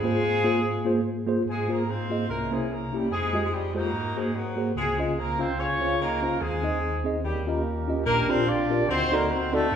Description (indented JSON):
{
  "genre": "gospel",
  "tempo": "146 BPM",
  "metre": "4/4",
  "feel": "swing 57% on 8ths",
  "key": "Ab major",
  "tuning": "A4 = 441 Hz",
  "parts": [
    { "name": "dark horn section", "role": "melody", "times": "0.0-9.8 s", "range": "Gb3 to D5", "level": "-26 LUFS", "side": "equal", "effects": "none" },
    { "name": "mellow tine electric piano", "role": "accompaniment", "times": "0.0-9.8 s", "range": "Bb1 to F5", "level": "-26 LUFS", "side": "equal", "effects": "medium stereo tremolo" }
  ],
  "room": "wet large studio reverb, RT60 1.3 s",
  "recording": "band playing live in one room",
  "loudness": "-23 LUFS",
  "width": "side -8 dB against mid",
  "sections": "0.0-1.5 A section; 1.5-8.1 B section; 8.1-9.8 A section",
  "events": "none",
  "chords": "0.0 Ab69; 2.3 C7b9; 3.1 Fm9; 3.9 Ab9; 4.8 Dbmaj9; 6.4 Ab/Eb; 7.2 Eb9; 8.1 Bb69; 8.9 D7b9"
}